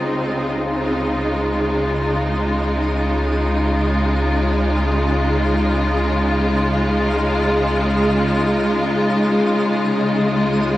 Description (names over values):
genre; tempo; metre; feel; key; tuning
ambient; free time; none; none; Db major; A4 = 440 Hz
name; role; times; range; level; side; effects
rich symphonic string section; sustained chords; 0.0-10.8 s; Db3 to F4; -17 LUFS; equal; none
round analog bass; bass; 0.0-10.8 s; Db2; -24 LUFS; equal; none
twinkling granular texture; texture; 0.0-10.8 s; Eb5 to Eb6; -32 LUFS; equal; built-in reverb
room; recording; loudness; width
wet huge ambient reverb, RT60 8.1 s; worn, warbling old tape, cassette tape, warbly pitch drift; -16 LUFS; side -15 dB against mid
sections
0.0-10.8 A section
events
fade-in on synth texture 0.0-10.8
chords
0.0 Dbadd9